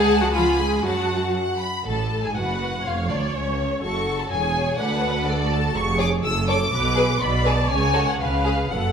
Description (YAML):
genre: quick classical-period movement for string orchestra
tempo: 122 BPM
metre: 2/4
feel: straight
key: F# minor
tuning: A4 = 440 Hz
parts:
  - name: rich studio violin section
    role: melody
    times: 0.0-8.9 s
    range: C#5 to E6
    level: -26 LUFS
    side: left 2 dB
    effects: none
  - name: warm symphonic violin section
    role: second line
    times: 0.0-8.6 s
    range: C#4 to B5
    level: -27 LUFS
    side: left 2 dB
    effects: none
  - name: rich studio viola section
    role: accompaniment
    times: 0.0-8.9 s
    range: E#4 to D5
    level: -26 LUFS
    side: equal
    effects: none
  - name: clear symphonic cello section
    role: bass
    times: 0.0-8.9 s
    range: C#2 to G#3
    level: -27 LUFS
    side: right 3 dB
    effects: none
  - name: clear symphonic double bass section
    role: bass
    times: 0.0-8.9 s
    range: E1 to F#2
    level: -26 LUFS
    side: right 2 dB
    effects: none
room: wet scoring stage reverb, RT60 1.7 s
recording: minimal, uncompressed stereo recording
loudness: -20 LUFS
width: side -7 dB against mid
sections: 0.0-1.9 A section; 1.9-8.9 A section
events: none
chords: 0.4 C#7; 0.9 F#m; 1.9 N.C.; 2.4 F#sus4; 2.9 C#/E#; 3.8 F#m; 4.3 C#m/E; 4.8 D; 5.8 C#/E#; 6.2 F#m; 6.7 G#dim/B; 7.7 F#m/C#; 8.2 C#7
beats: 0.35 | 0.86 1.36 | 1.86 2.36 | 2.85 3.34 | 3.83 4.31 | 4.79 5.27 | 5.75 6.24 | 6.72 7.21 | 7.70 8.20 | 8.71